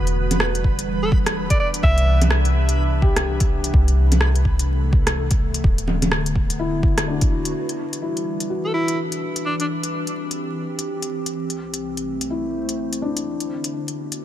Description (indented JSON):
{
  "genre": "future garage",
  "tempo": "126 BPM",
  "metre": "4/4",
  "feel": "swing 61% on 16ths",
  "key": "E minor",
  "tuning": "A4 = 441 Hz",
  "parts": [
    { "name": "warbly tape-like pad", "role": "sustained chords", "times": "0.0-14.2 s", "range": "C2 to C5", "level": "-27 LUFS", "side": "equal", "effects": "chorus, built-in reverb, sidechain pumping" },
    { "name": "soft 808-style bass", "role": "bass", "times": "0.0-7.5 s", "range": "D1 to C2", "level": "-20 LUFS", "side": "equal", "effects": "sidechain pumping" },
    { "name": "backwards swelling texture", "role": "texture", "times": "0.0-7.6 s", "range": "B3 to B4", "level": "-35 LUFS", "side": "right 1 dB", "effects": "built-in reverb" },
    { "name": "organic electronic drum kit", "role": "drums", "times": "0.1-14.2 s", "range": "bongos, hi-hat, rim click", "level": "-25 LUFS", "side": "equal", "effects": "none" },
    { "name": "electronic kick drum", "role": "drums", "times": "0.6-7.3 s", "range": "none", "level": "-19 LUFS", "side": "equal", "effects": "overdrive" },
    { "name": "clear alto saxophone", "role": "melody", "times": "1.0-2.2, 8.6-9.7 s", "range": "D4 to E5", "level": "-26 LUFS", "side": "right 1 dB", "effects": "dub echo" },
    { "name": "felt-muted upright piano", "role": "accompaniment", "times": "3.0-13.5 s", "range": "D4 to G4", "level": "-29 LUFS", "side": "left 4 dB", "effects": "sidechain pumping, low-pass filter, digital delay" }
  ],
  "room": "light reverb, digital ambience",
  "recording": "vinyl crackle",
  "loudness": "-18 LUFS",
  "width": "side -12 dB against mid",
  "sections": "0.0-7.5 A section; 7.5-14.2 B section",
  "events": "none",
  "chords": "0.0 Em9; 1.8 Cmaj9; 3.7 Am7/C; 5.6 Bm7/D; 7.5 Em9; 9.4 Cmaj9; 11.4 Am7/C; 13.3 Bm7/D"
}